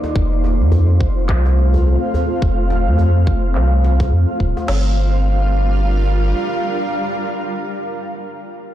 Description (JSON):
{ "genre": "organic downtempo", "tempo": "106 BPM", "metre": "4/4", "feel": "swing 58% on 16ths", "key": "G minor", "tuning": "A4 = 440 Hz", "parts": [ { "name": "granular cloud pad", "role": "sustained chords", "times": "0.0-7.7 s", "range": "G3 to F5", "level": "-21 LUFS", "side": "equal", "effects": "built-in reverb, sidechain pumping" }, { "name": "electronic shaker and handclaps", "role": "drums", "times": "0.0-4.7 s", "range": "none", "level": "-30 LUFS", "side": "equal", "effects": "low-pass filter on perc, low-pass filter on snare, low-pass filter on room" }, { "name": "djembe", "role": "percussion", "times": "0.0-4.7 s", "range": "none", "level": "-25 LUFS", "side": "left 1 dB", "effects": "none" }, { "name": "warm sub bass", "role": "bass", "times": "0.2-6.3 s", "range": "D1 to F2", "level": "-14 LUFS", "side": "equal", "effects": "transformer saturation" }, { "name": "organic electronic drum kit", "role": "drums", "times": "0.2-4.8 s", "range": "crash cymbal, kick drum, snare drum", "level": "-20 LUFS", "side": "equal", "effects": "none" } ], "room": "light reverb", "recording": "blown-out, overdriven recording, overdrive", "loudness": "-14 LUFS", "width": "side -12 dB against mid", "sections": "0.0-4.7 A section; 4.7-6.9 B section", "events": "filter sweep on drum 0.0-4.7", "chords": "0.2 F; 4.7 Gm7" }